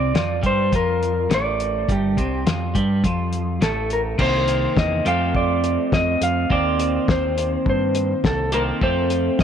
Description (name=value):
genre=indie rock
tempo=104 BPM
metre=4/4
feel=straight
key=G minor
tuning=A4 = 441 Hz
part: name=electric guitar through a small old amp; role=melody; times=0.0-9.4 s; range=G4 to F5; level=-22 LUFS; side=equal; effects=warbly pitch drift, tape echo
part: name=twelve-string electric guitar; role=riff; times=0.0-9.4 s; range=G2 to G4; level=-23 LUFS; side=right 1 dB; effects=none
part: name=growling fingered electric bass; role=bass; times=0.0-9.4 s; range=G1 to G2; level=-25 LUFS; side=equal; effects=overdrive
part: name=cloth-damped thuddy drum kit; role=drums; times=0.2-9.4 s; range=crash cymbal, hi-hat, kick drum, snare drum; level=-23 LUFS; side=left 2 dB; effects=none
room=moderate spring reverb, RT60 1.5 s, small room ambience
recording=1960s-style stereo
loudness=-18 LUFS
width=side -8 dB against mid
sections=0.0-4.2 A section; 4.2-9.4 B section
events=none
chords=0.0 G5; 4.2 Cm7; 5.1 Fadd9; 6.5 Cm7/Eb; 8.8 Fadd9